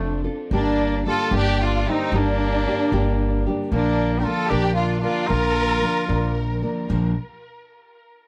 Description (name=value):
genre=mexican folk, mariachi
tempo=75 BPM (dotted quarters)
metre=6/8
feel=straight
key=Bb major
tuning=A4 = 440 Hz
part: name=warm studio violin section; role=melody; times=0.0-6.4 s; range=D4 to Bb4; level=-27 LUFS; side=equal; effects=tape echo
part: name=bright trumpet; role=second line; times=0.0-6.4 s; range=A3 to G4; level=-30 LUFS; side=equal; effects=none
part: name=nylon-string guitar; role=accompaniment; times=0.0-7.1 s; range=G2 to Bb4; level=-27 LUFS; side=equal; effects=none
part: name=upright bass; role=bass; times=0.0-7.2 s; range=F1 to Bb1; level=-27 LUFS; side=equal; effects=none
room=light reverb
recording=dry, gritty hardware recording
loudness=-22 LUFS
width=mono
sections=0.0-6.9 A section; 6.9-8.3 B section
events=none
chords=0.0 F; 0.5 Gm; 3.7 Bb